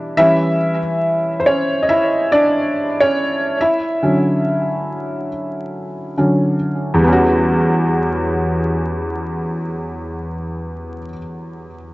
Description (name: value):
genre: hip hop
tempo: 70 BPM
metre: 4/4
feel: swing 60% on 16ths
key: E dorian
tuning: A4 = 440 Hz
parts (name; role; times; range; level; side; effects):
- felt-muted upright piano; solo; 0.0-11.9 s; E2 to E5; -16 LUFS; equal; cassette tape, analog delay
room: light reverb, small room ambience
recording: vinyl crackle, nothing above 7.9 kHz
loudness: -15 LUFS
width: side -20 dB against mid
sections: 0.2-7.0 A section; 7.0-10.5 B section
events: felt piano solo 0.2-7.0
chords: 0.2 Em6; 3.6 Dmaj9; 7.0 Em69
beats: | 0.17 1.02 1.88 2.74 | 3.59 4.45 5.31 6.17 | 7.02 7.88 8.74 9.59